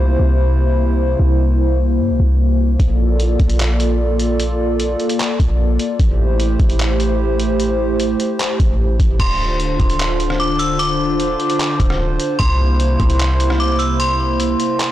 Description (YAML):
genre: hip hop, atmospheric cloud-rap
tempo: 150 BPM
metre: 4/4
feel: half-time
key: D minor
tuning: A4 = 440 Hz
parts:
  - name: hollow soft pad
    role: sustained chords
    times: 0.0-14.9 s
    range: C3 to D5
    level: -19 LUFS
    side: equal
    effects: chorus, sidechain pumping
  - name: clean 808-style bass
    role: bass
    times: 0.0-14.6 s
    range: D1 to G2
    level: -17 LUFS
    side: equal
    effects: none
  - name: trip hop sampler-style drum kit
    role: drums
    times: 2.8-14.9 s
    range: crash cymbal, handclaps, hi-hat, kick drum, rim click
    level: -20 LUFS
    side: equal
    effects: none
  - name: metallic FM bell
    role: melody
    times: 9.2-14.9 s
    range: C6 to E6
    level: -21 LUFS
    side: equal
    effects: chorus, low-pass filter, tape echo
room: little or no reverb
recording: blown-out, overdriven recording, overdrive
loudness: -14 LUFS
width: side -13 dB against mid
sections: 0.0-9.2 A section; 9.2-14.9 B section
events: none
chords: 0.0 C7; 2.8 Bbmaj7; 6.0 Am7; 9.2 Dm7; 12.4 C7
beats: 0.00 0.40 0.80 | 1.20 1.60 2.00 2.40 | 2.80 3.20 3.60 4.00 | 4.40 4.80 5.20 5.60 | 6.00 6.40 6.80 7.20 | 7.60 8.00 8.40 8.80 | 9.20 9.60 10.00 10.40 | 10.80 11.20 11.60 12.00 | 12.40 12.80 13.20 13.60 | 14.00 14.40 14.80